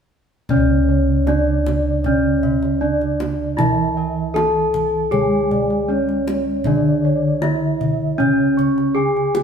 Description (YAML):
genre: Javanese gamelan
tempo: 78 BPM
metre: 4/4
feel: straight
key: C# pelog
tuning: A4 = 439 Hz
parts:
  - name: gamelan-type bronze metallophone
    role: melody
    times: 0.5-9.4 s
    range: C#4 to A4-20c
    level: -19 LUFS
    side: equal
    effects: none
  - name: gamelan-type bronze metallophone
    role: accompaniment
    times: 0.5-9.4 s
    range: C#3 to G#3-30c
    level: -23 LUFS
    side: right 1 dB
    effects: none
  - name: gamelan-type bossed gongs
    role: arpeggios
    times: 0.5-9.4 s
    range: C#5 to C#6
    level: -26 LUFS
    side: right 1 dB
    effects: none
  - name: gamelan-type bronze metallophone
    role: arpeggios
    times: 0.5-9.4 s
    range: C#5 to A5-20c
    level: -26 LUFS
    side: right 1 dB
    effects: none
  - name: gamelan-type bossed gongs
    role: bass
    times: 0.5-9.4 s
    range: C#2 to E4-30c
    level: -24 LUFS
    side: equal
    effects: none
  - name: kendang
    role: percussion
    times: 0.5-9.4 s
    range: none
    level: -26 LUFS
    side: left 2 dB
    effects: none
room: wet stone room reverb, RT60 1.3 s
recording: band playing live in one room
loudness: -16 LUFS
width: side -7 dB against mid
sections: 0.5-9.4 A section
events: none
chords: none